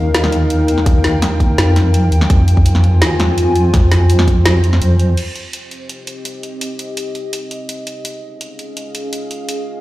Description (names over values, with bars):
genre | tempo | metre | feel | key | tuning
half-time drum and bass | 167 BPM | 4/4 | half-time | C phrygian | A4 = 443 Hz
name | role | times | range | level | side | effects
dark analog pad | sustained chords | 0.0-9.8 s | C4 to Ab5 | -20 LUFS | left 1 dB | chorus, sidechain pumping
deep soft wobble bass | bass | 0.0-5.2 s | Eb2 to F2 | -12 LUFS | equal | chorus
drum and bass drum kit | drums | 0.1-9.6 s | crash cymbal, hi-hat, snare drum | -20 LUFS | equal | none
electronic kick drum | drums | 0.9-4.3 s | none | -12 LUFS | equal | none
room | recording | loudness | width
light reverb | played on a big sound system in a bare room, large studio reverb | -12 LUFS | side -16 dB against mid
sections
0.0-5.2 A section; 5.2-9.8 B section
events
drop 0.0-5.2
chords
0.0 Eb; 2.3 Fm; 5.2 Cm; 8.0 Dbadd9